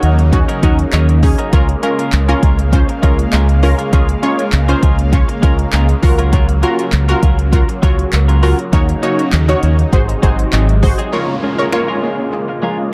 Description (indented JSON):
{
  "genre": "dance-pop",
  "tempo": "100 BPM",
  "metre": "4/4",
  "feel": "straight",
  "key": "Db major",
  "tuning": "A4 = 440 Hz",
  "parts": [
    { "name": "punchy chord stab", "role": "accompaniment", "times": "0.0-12.3 s", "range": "Db4 to Db5", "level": "-22 LUFS", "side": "equal", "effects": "chorus, sidechain pumping" },
    { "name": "filtered supersaw swell", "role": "sustained chords", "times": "0.0-12.9 s", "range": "C3 to F5", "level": "-24 LUFS", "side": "equal", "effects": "phaser, sidechain pumping" },
    { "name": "twelve-string electric guitar", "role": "riff", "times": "0.0-12.8 s", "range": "Gb3 to Bb4", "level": "-26 LUFS", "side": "equal", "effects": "subtle chorus, dub echo" },
    { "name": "deep dub fingered electric bass", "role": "bass", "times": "0.0-10.9 s", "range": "Ab1 to Eb2", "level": "-16 LUFS", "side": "equal", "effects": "sidechain pumping" },
    { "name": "deep house drum kit", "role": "drums", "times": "0.0-11.9 s", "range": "finger snaps, handclaps, hi-hat, kick drum", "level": "-17 LUFS", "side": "equal", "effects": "none" },
    { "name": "soft round pluck", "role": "arpeggios", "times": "11.1-12.8 s", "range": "F3 to F5", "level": "-26 LUFS", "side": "equal", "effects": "chorus, sidechain pumping, dub echo" },
    { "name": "downlifter", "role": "sound effects", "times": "11.1-12.9 s", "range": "none", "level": "-29 LUFS", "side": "equal", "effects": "none" }
  ],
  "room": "light reverb",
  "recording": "echo-heavy mix",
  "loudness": "-13 LUFS",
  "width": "mono",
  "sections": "0.0-11.1 A section; 11.1-12.9 B section",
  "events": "none",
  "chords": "0.0 Ebm7; 1.5 Db6; 6.0 Gbmaj7/Db; 8.7 Ebm7; 9.9 Ab7; 11.1 Db6",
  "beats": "0.33 0.93 | 1.53 2.13 2.73 3.33 | 3.93 4.53 5.13 5.73 | 6.33 6.93 7.53 8.13 | 8.73 9.33 9.93 10.53 | 11.13 11.73 12.33 12.93"
}